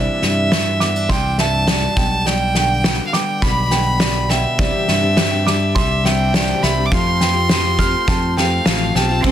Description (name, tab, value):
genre	indie folk with a building arrangement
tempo	103 BPM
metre	4/4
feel	straight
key	C major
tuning	A4 = 440 Hz
part	clear fiddle	melody	0.0-9.3 s	E5 to D6	-20 LUFS	right 1 dB	plate reverb, analog delay
part	fingerpicked steel-string acoustic guitar	accompaniment	0.0-6.6 s	G2 to G4	-26 LUFS	left 2 dB	none
part	warm upright piano	arpeggios	0.0-9.3 s	C4 to F6	-25 LUFS	right 7 dB	plate reverb
part	fingered electric bass	bass	0.0-9.3 s	A1 to G2	-20 LUFS	equal	none
part	loose indie drum kit	drums	0.2-9.3 s	crash cymbal, kick drum, snare drum	-19 LUFS	equal	soft clipping on snare
part	picked plugged-in steel-string acoustic guitar	accompaniment	4.6-9.3 s	C3 to G4	-23 LUFS	left 7 dB	none
part	warm cello	second line	9.2-9.3 s	C4	-16 LUFS	right 7 dB	none
part	warm brass ensemble	sustained chords	9.2-9.3 s	G4 to C6	-29 LUFS	left 2 dB	none
room	light reverb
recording	dense, heavily limited modern master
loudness	-14 LUFS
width	side -10 dB against mid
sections	0.0-9.2 A section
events	none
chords	0.0 Cadd9; 2.0 G/B; 4.6 Cadd9; 6.9 Fadd9